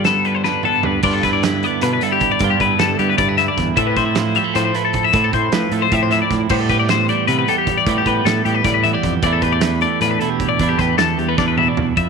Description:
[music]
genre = math rock and midwest emo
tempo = 307 BPM (eighths)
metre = 7/8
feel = straight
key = unclear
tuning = A4 = 439 Hz
[part]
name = twelve-string electric guitar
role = accompaniment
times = 0.0-12.1 s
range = E2 to G4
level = -20 LUFS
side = right 12 dB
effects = none
[part]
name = twelve-string electric guitar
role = arpeggios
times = 0.0-12.1 s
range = G4 to E5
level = -18 LUFS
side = left 13 dB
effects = wide subtle chorus
[part]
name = growling fingered electric bass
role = bass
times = 0.0-12.1 s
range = E2 to G3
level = -21 LUFS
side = equal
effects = overdrive
[part]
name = loose indie drum kit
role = drums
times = 0.0-12.1 s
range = crash cymbal, hi-hat, kick drum, snare drum, toms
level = -23 LUFS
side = right 4 dB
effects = none
[sound]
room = light reverb, studio reverb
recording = 1960s-style stereo with parts hard left and right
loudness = -14 LUFS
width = side -5 dB against mid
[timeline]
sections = 0.0-1.0 A section; 1.0-12.0 B section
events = drum fill 0.4-1.0, 11.4-12.0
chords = 0.0 G7; 3.8 Fmaj7/A; 6.5 Am9; 9.2 E7sus4

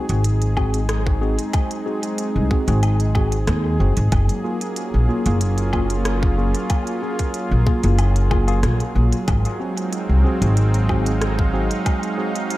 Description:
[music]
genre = ambient dub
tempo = 93 BPM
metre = 4/4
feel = swing 53% on 16ths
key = Ab mixolydian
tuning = A4 = 444 Hz
[part]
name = warm analog pad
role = sustained chords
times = 0.0-12.6 s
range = Gb3 to Ab4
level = -25 LUFS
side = right 1 dB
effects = chorus
[part]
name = tine electric piano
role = stabs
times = 0.0-12.3 s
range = Bb3 to Ab4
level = -28 LUFS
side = left 1 dB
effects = medium stereo tremolo, dub echo
[part]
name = upright bass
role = bass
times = 0.1-11.7 s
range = Gb1 to Eb2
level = -18 LUFS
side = equal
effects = none
[part]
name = organic electronic drum kit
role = drums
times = 0.1-12.6 s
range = hi-hat, rim click, woodblock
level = -29 LUFS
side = equal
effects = dub echo
[part]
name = electronic kick drum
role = drums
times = 0.6-12.0 s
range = none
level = -20 LUFS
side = equal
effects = none
[part]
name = wind-like tuned noise texture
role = texture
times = 9.8-12.6 s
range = F5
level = -33 LUFS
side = right 2 dB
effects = built-in reverb
[sound]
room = digital ambience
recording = none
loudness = -17 LUFS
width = side -16 dB against mid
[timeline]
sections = 0.0-12.6 A section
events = none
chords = 0.0 Ab7; 4.1 Gbmaj9; 9.3 Ab7

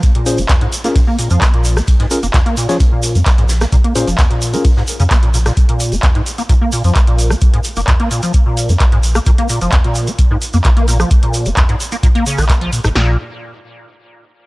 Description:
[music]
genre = acid house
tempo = 130 BPM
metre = 4/4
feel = straight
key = Bb minor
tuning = A4 = 440 Hz
[part]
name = warm sub bass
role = bass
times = 0.0-13.2 s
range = F1 to Bb2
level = -15 LUFS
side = equal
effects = sidechain pumping
[part]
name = electro analog drum machine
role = drums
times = 0.0-13.1 s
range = kick drum, snare drum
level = -12 LUFS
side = equal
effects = none
[part]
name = electro analog drum machine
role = drums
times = 0.0-12.9 s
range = handclaps, hi-hat, rim click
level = -21 LUFS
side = equal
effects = none
[part]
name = loose indie drum kit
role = drums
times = 0.0-5.6 s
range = hi-hat, snare drum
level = -32 LUFS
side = right 1 dB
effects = none
[part]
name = tube shaker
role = percussion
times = 0.0-12.9 s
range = none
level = -25 LUFS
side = right 2 dB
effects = none
[part]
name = liquid acid bass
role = riff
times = 0.2-13.2 s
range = Ab2 to Db4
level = -19 LUFS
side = equal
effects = overdrive, ensemble chorus, sidechain pumping, tape echo
[part]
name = bright tine electric piano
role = stabs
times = 0.3-4.6 s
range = Db4 to Db5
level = -21 LUFS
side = left 2 dB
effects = medium stereo tremolo, tape echo
[sound]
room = studio ambience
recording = cassette tape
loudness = -11 LUFS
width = side -21 dB against mid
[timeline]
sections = 0.0-13.0 A section; 13.0-14.5 B section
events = filter sweep on acid bass 0.0-13.0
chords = 0.0 Bb5; 13.0 N.C.

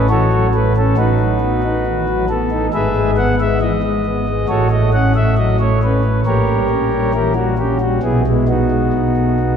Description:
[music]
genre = classical, chorale-style piece for pipe organ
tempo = 68 BPM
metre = 4/4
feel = rubato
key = E major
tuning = A4 = 440 Hz
[part]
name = pipe organ, principal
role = solo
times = 0.0-9.6 s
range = G#1 to F#5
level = -13 LUFS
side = equal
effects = none
[sound]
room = wet church reverb, RT60 3.1 s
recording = recorded in a church or concert hall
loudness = -13 LUFS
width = side -7 dB against mid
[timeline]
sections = 0.0-9.6 A section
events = none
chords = 0.0 F#m7/A; 1.0 B7/A; 2.7 E/G#; 4.5 F#m/A; 6.3 A#dim7; 8.0 E/B; 8.9 B7

